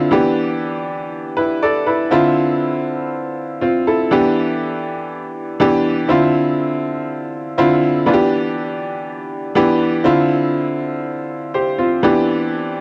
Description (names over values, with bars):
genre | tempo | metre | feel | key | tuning
disco | 121 BPM | 4/4 | straight | D dorian | A4 = 440 Hz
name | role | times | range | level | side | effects
bright grand piano | solo | 0.0-12.8 s | D3 to D5 | -18 LUFS | equal | cassette tape
room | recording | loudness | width
light reverb, small room ambience | home recording on cassette | -18 LUFS | mono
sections
0.0-12.8 A section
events
none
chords
0.1 Em7; 2.1 Dm9; 4.1 Em7; 6.1 Dm9; 8.1 Em7; 10.1 Dm9; 12.0 Em7